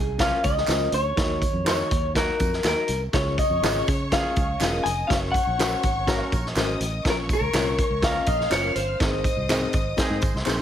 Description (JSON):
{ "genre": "uptempo 1960s-style soul", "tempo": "123 BPM", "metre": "4/4", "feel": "straight", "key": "Db major", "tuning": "A4 = 440 Hz", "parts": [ { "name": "electric guitar through a small old amp", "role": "melody", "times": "0.0-10.2 s", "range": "Ab4 to Ab5", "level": "-25 LUFS", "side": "left 1 dB", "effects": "none" }, { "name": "fingered electric bass", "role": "bass", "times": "0.0-10.6 s", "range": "Fb1 to Db3", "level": "-29 LUFS", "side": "right 1 dB", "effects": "none" }, { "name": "clear horn section", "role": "second line", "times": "0.2-10.3 s", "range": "F3 to Bb4", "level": "-33 LUFS", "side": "right 3 dB", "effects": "none" }, { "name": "tine electric piano", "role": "accompaniment", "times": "0.2-10.6 s", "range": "Ab2 to Eb5", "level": "-30 LUFS", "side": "left 3 dB", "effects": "medium stereo tremolo" }, { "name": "vintage drum kit", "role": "drums", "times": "0.2-10.6 s", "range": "hi-hat, kick drum, snare drum", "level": "-25 LUFS", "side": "equal", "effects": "none" }, { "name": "tambourine and handclaps", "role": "percussion", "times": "0.2-10.6 s", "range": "none", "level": "-34 LUFS", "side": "right 3 dB", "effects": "none" }, { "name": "rich studio string section", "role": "second line", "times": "3.1-10.6 s", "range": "C5 to F6", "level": "-33 LUFS", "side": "left 2 dB", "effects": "none" } ], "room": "light reverb", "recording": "none", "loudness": "-21 LUFS", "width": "side -10 dB against mid", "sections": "0.0-10.6 A section", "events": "none", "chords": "0.0 Bbm; 1.2 Ebm; 3.1 Db; 5.1 Gb; 7.1 Bbm; 9.0 Ab" }